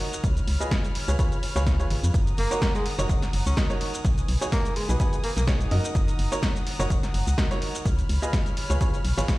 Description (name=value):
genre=piano house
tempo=126 BPM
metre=4/4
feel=swing 54% on 16ths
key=F# major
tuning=A4 = 440 Hz
part: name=dark studio violin section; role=sustained chords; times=0.0-9.4 s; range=B4 to E#6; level=-37 LUFS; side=left 1 dB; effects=sidechain pumping
part: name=clear baby grand piano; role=riff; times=0.0-9.4 s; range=D#4 to D#5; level=-32 LUFS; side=right 1 dB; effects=sidechain pumping, digital delay
part: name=punchy analog drum machine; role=drums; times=0.0-9.4 s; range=hi-hat, shaker, snare drum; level=-32 LUFS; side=equal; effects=none
part: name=organ-like FM bass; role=bass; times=0.2-9.2 s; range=D#1 to F#2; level=-24 LUFS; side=equal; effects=sidechain pumping
part: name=electronic kick drum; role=drums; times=0.2-9.4 s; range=none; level=-25 LUFS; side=equal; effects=none
part: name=warm tenor saxophone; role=melody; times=2.4-5.4 s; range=G#3 to C#4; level=-32 LUFS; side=right 1 dB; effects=digital delay
room=small room ambience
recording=played on a big sound system in a bare room, stone room reverb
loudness=-22 LUFS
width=side -19 dB against mid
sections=0.0-9.4 A section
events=none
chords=0.2 C#7; 2.1 F#6; 4.0 B6; 5.7 F#6; 7.9 C#7